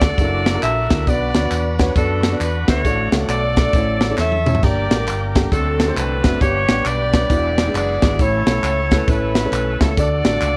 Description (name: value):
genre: uptempo gospel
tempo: 135 BPM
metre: 4/4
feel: swing 62% on 8ths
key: D major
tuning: A4 = 437 Hz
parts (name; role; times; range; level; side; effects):
- clear saxophone section; melody; 0.0-10.6 s; C4 to E5; -23 LUFS; equal; none
- warm upright piano; accompaniment; 0.0-10.6 s; G2 to E5; -26 LUFS; equal; none
- bright tonewheel organ; sustained chords; 0.0-10.6 s; C#3 to F#5; -33 LUFS; equal; none
- fingered electric bass with an envelope filter; bass; 0.0-10.6 s; E1 to F#2; -25 LUFS; equal; none
- crisp fusion drum kit; drums; 0.0-10.5 s; hi-hat, kick drum, snare drum, splash cymbal, toms; -20 LUFS; equal; none
- tambourine and handclaps; percussion; 0.0-10.5 s; none; -34 LUFS; equal; none
room: studio reverb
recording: worn, warbling old tape, cassette tape, warbly pitch drift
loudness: -18 LUFS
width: mono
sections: 0.0-10.6 A section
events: drum fill 4.2-4.6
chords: 0.2 F#7alt; 1.1 Bm; 2.9 D/A; 3.7 A; 4.6 Gm; 5.5 D7; 6.4 G; 7.3 E9; 8.2 A; 10.0 D